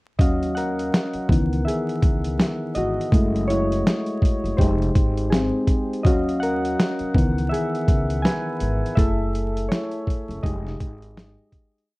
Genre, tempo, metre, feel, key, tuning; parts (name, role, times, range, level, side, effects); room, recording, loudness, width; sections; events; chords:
lo-fi hip hop; 82 BPM; 4/4; swing 58% on 16ths; A4 = 440 Hz
soft electric-piano-like synth keys; accompaniment; 0.2-11.9 s; Eb3 to Ab5; -23 LUFS; equal; chorus, cassette tape, low-pass filter
upright bass; bass; 0.2-11.3 s; F1 to Eb2; -26 LUFS; equal
dusty soul sampler-style drum kit; drums; 0.2-11.9 s; hi-hat, kick drum, snare drum; -20 LUFS; equal; vintage 12-bit sampler grit
light reverb; dark, warm production, vinyl crackle; -19 LUFS; side -21 dB against mid
0.2-11.9 A section
synth keys solo 0.2-11.9; fade-out 9.0-11.9
0.2 Ebm7; 1.3 Dbm7; 3.1 Gbm7; 4.6 Fm7; 6.0 Ebm7; 7.1 Dbm7; 9.0 Gbm7; 10.4 Fm7